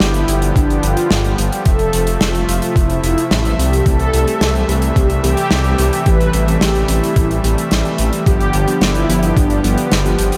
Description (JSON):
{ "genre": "synthwave", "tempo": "109 BPM", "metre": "4/4", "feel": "straight", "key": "unclear", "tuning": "A4 = 440 Hz", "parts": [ { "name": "mellow synth brass", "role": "melody", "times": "0.0-10.2 s", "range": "B3 to B4", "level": "-23 LUFS", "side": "equal", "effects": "chorus, slapback echo, delay" }, { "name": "soft supersaw", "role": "sustained chords", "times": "0.0-10.4 s", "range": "C3 to E5", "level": "-24 LUFS", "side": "equal", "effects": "sidechain pumping" }, { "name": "detuned saw bass", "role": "bass", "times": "0.0-10.3 s", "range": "F1 to C2", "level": "-20 LUFS", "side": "equal", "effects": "chorus, sidechain pumping" }, { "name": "natural country drum kit", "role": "drums", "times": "0.0-10.4 s", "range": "hi-hat, snare drum", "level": "-23 LUFS", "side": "equal", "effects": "none" }, { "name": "electronic kick drum", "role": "drums", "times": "0.6-9.5 s", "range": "none", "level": "-17 LUFS", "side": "equal", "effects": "overdrive" }, { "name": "mellow FM electric piano", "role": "stabs", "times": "3.9-10.4 s", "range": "E3 to G4", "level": "-24 LUFS", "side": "equal", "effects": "chorus, phaser, cassette tape, slapback echo" } ], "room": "moderate lush hall reverb, RT60 2.0 s", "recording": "big arena sound", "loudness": "-15 LUFS", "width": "mono", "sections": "0.0-10.4 A section", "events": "none", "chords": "0.0 G7; 1.7 Fmaj7; 3.9 C6; 6.1 Am7; 8.3 G7" }